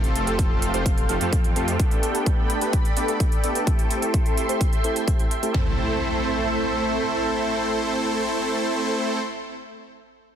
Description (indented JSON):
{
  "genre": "EDM, festival progressive house",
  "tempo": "128 BPM",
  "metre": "4/4",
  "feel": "straight",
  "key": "A minor",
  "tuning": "A4 = 441 Hz",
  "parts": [
    { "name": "lush unison pad", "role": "sustained chords", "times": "0.0-9.2 s", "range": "A3 to C6", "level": "-29 LUFS", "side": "equal", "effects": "chorus, phaser, sidechain pumping" },
    { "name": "supersaw chords", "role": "riff", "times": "0.0-9.2 s", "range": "A3 to C5", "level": "-25 LUFS", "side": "right 1 dB", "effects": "sidechain pumping, low-pass filter, digital delay" },
    { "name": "wide detuned saw bass", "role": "bass", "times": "0.0-1.8 s", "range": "F1 to F2", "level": "-27 LUFS", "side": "equal", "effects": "chorus, sidechain pumping" },
    { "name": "electronic hi-hat", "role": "drums", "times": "0.0-5.5 s", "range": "none", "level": "-32 LUFS", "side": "right 4 dB", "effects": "none" },
    { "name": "electronic kick drum", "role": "drums", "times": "0.4-5.7 s", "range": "none", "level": "-21 LUFS", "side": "equal", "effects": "none" },
    { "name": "impact", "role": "sound effects", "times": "5.5-9.2 s", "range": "none", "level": "-33 LUFS", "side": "equal", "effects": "none" }
  ],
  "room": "light reverb",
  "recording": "dense, heavily limited modern master",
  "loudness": "-20 LUFS",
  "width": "side -9 dB against mid",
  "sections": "0.0-5.5 A section; 5.5-9.3 B section",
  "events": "filter sweep on supersaw synth 0.0-5.5",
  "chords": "0.0 Fadd9; 1.8 Gadd9; 3.7 C6; 5.5 Am"
}